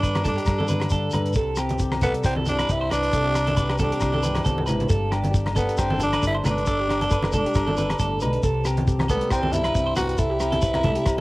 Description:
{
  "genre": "highlife guitar band",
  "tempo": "136 BPM",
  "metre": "4/4",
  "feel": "swing 54% on 16ths",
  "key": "unclear",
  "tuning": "A4 = 440 Hz",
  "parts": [
    { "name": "growling tenor saxophone", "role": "melody", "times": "0.0-11.2 s", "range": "B3 to F#4", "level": "-25 LUFS", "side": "equal", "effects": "cassette tape" },
    { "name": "fingerpicked plugged-in steel-string acoustic guitar", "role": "accompaniment", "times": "0.0-11.2 s", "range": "G2 to A4", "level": "-28 LUFS", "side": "left 2 dB", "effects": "cassette tape" },
    { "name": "electric guitar through a small old amp", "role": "arpeggios", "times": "0.0-11.2 s", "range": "G4 to C5", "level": "-28 LUFS", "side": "right 3 dB", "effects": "phaser, cassette tape, tape echo" },
    { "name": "fingered electric bass", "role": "bass", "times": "0.0-11.2 s", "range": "G1 to G2", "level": "-29 LUFS", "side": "equal", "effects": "none" },
    { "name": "damped 70s drum kit", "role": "drums", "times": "0.0-11.2 s", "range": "hi-hat, kick drum, rim click", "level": "-25 LUFS", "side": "equal", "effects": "cassette tape" },
    { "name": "shekere", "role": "percussion", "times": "0.0-11.2 s", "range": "none", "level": "-33 LUFS", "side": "left 1 dB", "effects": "none" },
    { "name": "agogo bells", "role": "percussion", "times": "0.1-11.2 s", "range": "none", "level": "-34 LUFS", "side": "left 3 dB", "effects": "none" },
    { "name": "congas", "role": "percussion", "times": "0.2-11.2 s", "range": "none", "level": "-28 LUFS", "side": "right 1 dB", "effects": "none" }
  ],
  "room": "light reverb, studio ambience",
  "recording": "home recording on cassette",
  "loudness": "-20 LUFS",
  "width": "side -20 dB against mid",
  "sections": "0.0-11.2 A section",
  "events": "drum fill 4.3-4.9",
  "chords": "0.0 Gsus2; 1.4 C; 4.9 Gsus2; 8.4 C"
}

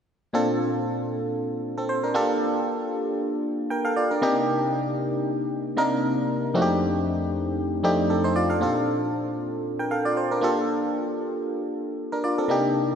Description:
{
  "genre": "amapiano",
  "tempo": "116 BPM",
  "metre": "4/4",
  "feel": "swing 55% on 16ths",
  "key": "Bb major",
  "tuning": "A4 = 444 Hz",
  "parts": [
    { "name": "barking FM electric piano", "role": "accompaniment", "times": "0.3-13.0 s", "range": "F2 to G5", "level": "-22 LUFS", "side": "equal", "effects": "chorus" }
  ],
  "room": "wet lush hall reverb, RT60 2.9 s",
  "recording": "dreamy mix soaked in reverb",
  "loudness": "-22 LUFS",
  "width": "side -7 dB against mid",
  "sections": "0.3-8.6 A section; 8.6-13.0 B section",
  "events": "none",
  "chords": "0.3 Bbmaj7; 4.2 Cm9; 6.5 F13; 8.6 Bbmaj7"
}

